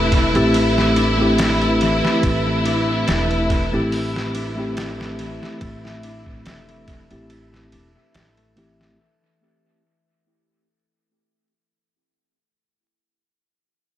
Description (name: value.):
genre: trip hop.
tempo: 71 BPM.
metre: 4/4.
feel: swing 54% on 16ths.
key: A minor.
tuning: A4 = 440 Hz.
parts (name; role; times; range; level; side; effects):
mellow tine electric piano; accompaniment; 0.0-9.0 s; A3 to G4; -21 LUFS; equal; harmonic tremolo, tape echo.
clear studio violin section; sustained chords; 0.0-9.0 s; E4; -23 LUFS; left 1 dB; low-pass filter.
concert harp; arpeggios; 0.0-11.7 s; E3 to A4; -28 LUFS; left 4 dB; vintage 12-bit sampler grit, low-pass filter, analog delay.
upright bass; bass; 0.0-9.0 s; E1 to A1; -25 LUFS; equal; none.
wind-like tuned noise texture; texture; 0.0-9.0 s; B4; -31 LUFS; right 6 dB; built-in reverb.
trip hop sampler-style drum kit; drums; 0.1-9.0 s; hi-hat, kick drum, ride cymbal, snare drum; -25 LUFS; equal; dub echo.
room: light reverb, studio reverb.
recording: echo-heavy mix, vinyl crackle.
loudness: -16 LUFS.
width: side -12 dB against mid.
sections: 0.0-9.0 A section.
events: fade-out 0.0-9.0.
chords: 0.0 Am7.